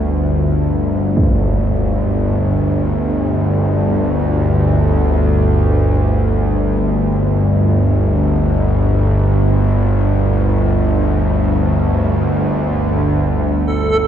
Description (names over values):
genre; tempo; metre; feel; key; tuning
dark ambient drone; free time; none; none; unclear; A4 = 440 Hz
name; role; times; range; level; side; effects
bowed-like drone; drone; 0.0-14.1 s; G1 to D2; -13 LUFS; equal; built-in reverb
impact; percussion; 1.2-1.4 s; none; -21 LUFS; equal; low-pass filter on sfx
deep dark ambient pad; sustained chords; 13.3-14.1 s; none; barely audible; none; none
backwards swelling texture; texture; 13.7-14.1 s; A4; -15 LUFS; right 3 dB; built-in reverb
room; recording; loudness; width
wet cathedral reverb, RT60 5.5 s; dark, warm production; -13 LUFS; side -10 dB against mid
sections
0.0-13.3 A section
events
filter sweep on synth drone 0.0-13.3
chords
0.0 G5; 13.3 Gsus2